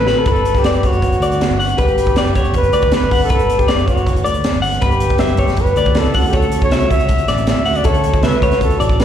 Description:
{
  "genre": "math rock and midwest emo",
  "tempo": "158 BPM",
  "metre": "4/4",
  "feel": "straight",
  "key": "unclear",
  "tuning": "A4 = 438 Hz",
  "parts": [
    { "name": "breathy trumpet", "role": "melody", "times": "0.0-9.0 s", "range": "F#4 to E5", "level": "-19 LUFS", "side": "equal", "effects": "slapback echo" },
    { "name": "twelve-string electric guitar", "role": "accompaniment", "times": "0.0-9.0 s", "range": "D2 to A4", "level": "-24 LUFS", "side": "right 9 dB", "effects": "phaser, slapback echo" },
    { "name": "twelve-string electric guitar", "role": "arpeggios", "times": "0.0-9.0 s", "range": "A4 to F#5", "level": "-19 LUFS", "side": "left 6 dB", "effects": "spring reverb, slapback echo" },
    { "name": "fingered electric bass", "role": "bass", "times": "0.0-9.0 s", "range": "F#1 to D2", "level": "-19 LUFS", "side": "equal", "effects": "none" },
    { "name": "crisp fusion drum kit", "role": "drums", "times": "0.1-9.0 s", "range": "hi-hat, kick drum, snare drum", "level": "-17 LUFS", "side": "equal", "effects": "none" }
  ],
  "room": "little or no reverb",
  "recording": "live gig heard through the venue's PA, recital hall reverb",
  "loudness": "-12 LUFS",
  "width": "side -9 dB against mid",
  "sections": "0.3-9.0 A section",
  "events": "drum fill 0.0",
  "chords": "0.3 Gmaj7; 6.2 Dmaj9",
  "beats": "| 0.26 0.65 1.03 1.41 | 1.79 2.17 2.55 2.93 | 3.31 3.69 4.07 4.45 | 4.83 5.21 5.58 5.96 | 6.34 6.72 7.10 7.48 | 7.86 8.23 8.61 8.99"
}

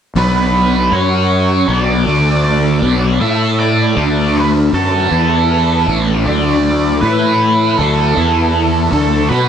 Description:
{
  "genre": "rock",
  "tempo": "79 BPM",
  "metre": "4/4",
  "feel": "straight",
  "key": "B minor",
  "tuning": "A4 = 442 Hz",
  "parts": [
    { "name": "octave-fuzz lead guitar", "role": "melody", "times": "0.2-9.5 s", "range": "A4 to E5", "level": "-17 LUFS", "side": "right 3 dB", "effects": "wah, distortion, slapback echo" },
    { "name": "overdriven combo organ", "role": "sustained chords", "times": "0.2-9.5 s", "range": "D3 to B4", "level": "-24 LUFS", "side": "right 2 dB", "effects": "none" },
    { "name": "thick fuzz guitar", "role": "riff", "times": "0.2-9.5 s", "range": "A2 to B4", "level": "-15 LUFS", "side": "left 1 dB", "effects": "distortion, phaser" },
    { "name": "fuzz fingered electric bass", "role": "bass", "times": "0.2-9.5 s", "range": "A1 to B2", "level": "-16 LUFS", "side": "left 1 dB", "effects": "overdrive" }
  ],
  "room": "light reverb, digital ambience",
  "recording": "none",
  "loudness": "-11 LUFS",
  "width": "side -8 dB against mid",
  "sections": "0.2-9.5 A section",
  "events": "none",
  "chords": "0.2 Bm7; 0.9 F#5; 1.7 Bm7; 2.1 D5; 2.8 Bm7; 3.2 A5; 4.0 D5; 4.7 Bm7; 5.1 E5; 5.9 Bm7; 6.3 Dadd9; 7.0 A5; 7.8 Dadd9; 8.2 E5; 8.9 Dadd9",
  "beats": "| 0.16 0.92 1.69 2.45 | 3.22 3.98 4.75 5.51 | 6.27 7.03 7.79 8.55 | 9.31"
}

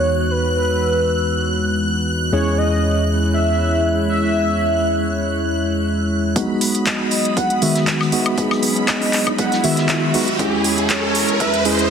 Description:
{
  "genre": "deep house",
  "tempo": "119 BPM",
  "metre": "4/4",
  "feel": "swing 54% on 16ths",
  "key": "E major",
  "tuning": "A4 = 439 Hz",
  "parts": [
    { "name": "warm velvety synth lead", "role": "melody", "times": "0.0-11.9 s", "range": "B4 to F#5", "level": "-23 LUFS", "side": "equal", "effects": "chorus, dub echo" },
    { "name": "hollow soft pad", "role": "sustained chords", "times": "0.0-11.9 s", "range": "E2 to E6", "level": "-25 LUFS", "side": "left 1 dB", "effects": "chorus, sidechain pumping" },
    { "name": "tine electric piano", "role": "stabs", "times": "0.0-11.9 s", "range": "E2 to G#4", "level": "-20 LUFS", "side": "equal", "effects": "fast stereo tremolo, sidechain pumping, low-pass filter" },
    { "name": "string machine, violins", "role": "texture", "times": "0.0-11.9 s", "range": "B5 to F#6", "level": "-28 LUFS", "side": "equal", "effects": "ensemble chorus" },
    { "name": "damped 70s drum kit", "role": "drums", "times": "6.4-11.8 s", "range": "hi-hat, snare drum", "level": "-30 LUFS", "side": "right 4 dB", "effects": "high-pass filter on hats, high-pass filter on snare, high-pass filter on room" },
    { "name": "deep house drum kit", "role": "drums", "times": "6.4-11.9 s", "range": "handclaps, hi-hat, woodblock", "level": "-21 LUFS", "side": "left 1 dB", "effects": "high-pass filter on hats, high-pass filter on snare, high-pass filter on perc, high-pass filter on room" },
    { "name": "electronic kick drum", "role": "drums", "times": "6.4-11.5 s", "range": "none", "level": "-27 LUFS", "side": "equal", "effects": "high-pass filter on kick, high-pass filter on room" },
    { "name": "riser", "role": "sound effects", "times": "8.5-11.9 s", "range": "none", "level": "-23 LUFS", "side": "right 2 dB", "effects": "none" }
  ],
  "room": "moderate lush hall reverb, RT60 2.9 s",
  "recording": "dense, heavily limited modern master",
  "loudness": "-16 LUFS",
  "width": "side -7 dB against mid",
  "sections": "0.0-6.4 A section; 6.4-11.9 B section",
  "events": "filter sweep on tine electric piano 0.0-6.4; build-up 6.4-11.9; riser 8.5-11.9",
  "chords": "0.0 Emaj9; 2.3 C#m/E; 6.4 Emaj9; 10.4 C#m/E",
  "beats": "| 0.31 0.81 1.32 1.82 | 2.33 2.83 3.33 3.84 | 4.34 4.85 5.35 5.86 | 6.36 6.87 7.37 7.87 | 8.38 8.88 9.39 9.89 | 10.39 10.90 11.40"
}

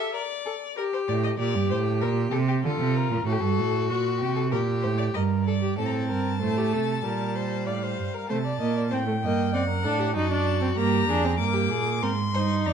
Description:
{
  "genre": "classical, baroque-style fugue for string quartet",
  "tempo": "96 BPM",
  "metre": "4/4",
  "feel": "straight",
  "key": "G minor",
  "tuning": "A4 = 438 Hz",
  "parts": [
    { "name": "rich violin", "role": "melody", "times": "0.0-12.7 s", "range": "F4 to D6", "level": "-31 LUFS", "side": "left 7 dB", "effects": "none" },
    { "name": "rich violin", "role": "second line", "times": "0.0-12.7 s", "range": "F#4 to Eb5", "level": "-30 LUFS", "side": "left 4 dB", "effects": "none" },
    { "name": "rich cello", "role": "bass", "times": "1.1-12.7 s", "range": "F2 to D3", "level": "-26 LUFS", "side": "right 5 dB", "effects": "none" },
    { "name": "rich viola", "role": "accompaniment", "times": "5.8-12.7 s", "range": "G3 to Eb4", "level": "-28 LUFS", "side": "right 2 dB", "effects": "none" }
  ],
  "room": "moderate stone room reverb, RT60 1.0 s",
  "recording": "dark, warm production",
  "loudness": "-23 LUFS",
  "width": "side -7 dB against mid",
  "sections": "0.0-5.8 A section; 5.8-12.7 B section",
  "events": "none",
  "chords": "0.0 D5; 0.8 Gm; 2.0 Bb5; 3.3 F#dim; 4.5 Gm; 5.8 Gsus24; 7.0 Gm/Bb; 8.3 Adim; 9.5 D/F#; 10.8 Gm; 12.0 Ab",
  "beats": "0.15 | 0.77 1.40 2.02 2.64 | 3.27 3.89 4.52 5.15 | 5.78 6.42 7.04 7.67 | 8.29 8.91 9.54 10.15 | 10.77 11.39 12.03 12.66"
}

